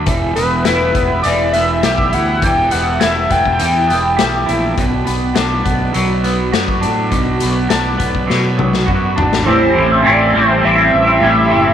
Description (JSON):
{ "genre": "psychedelic rock", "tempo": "102 BPM", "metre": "4/4", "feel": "straight", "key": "E minor", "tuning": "A4 = 444 Hz", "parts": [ { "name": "combo organ", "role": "sustained chords", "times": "0.0-11.7 s", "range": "F#4 to B5", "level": "-26 LUFS", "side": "right 12 dB", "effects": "none" }, { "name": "twangy electric guitar", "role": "riff", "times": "0.0-11.7 s", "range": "A2 to G4", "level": "-15 LUFS", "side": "equal", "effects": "phaser, double-tracked left and right" }, { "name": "fuzz fingered electric bass", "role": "bass", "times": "0.0-11.7 s", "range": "E1 to B2", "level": "-20 LUFS", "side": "right 1 dB", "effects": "overdrive" }, { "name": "raw garage drum kit", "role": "drums", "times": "0.1-9.5 s", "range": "hi-hat, kick drum, snare drum, toms", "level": "-19 LUFS", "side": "left 4 dB", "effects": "none" }, { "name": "overdriven synth lead", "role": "melody", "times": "0.4-4.5, 9.5-11.7 s", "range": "B4 to G5", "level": "-16 LUFS", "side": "equal", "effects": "distortion, chorus, tape echo" } ], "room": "light reverb, small room ambience", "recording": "1960s-style stereo", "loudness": "-12 LUFS", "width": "side -9 dB against mid", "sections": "0.0-9.5 A section; 9.5-11.7 B section", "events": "drum fill 8.3-9.5", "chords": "0.1 Em; 4.8 Bm; 9.5 Am7", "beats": "| 0.08 0.67 1.26 1.84 | 2.43 3.02 3.61 4.19 | 4.78 5.37 5.95 6.54 | 7.13 7.71 8.30 8.88 | 9.47 10.05 10.64 11.22" }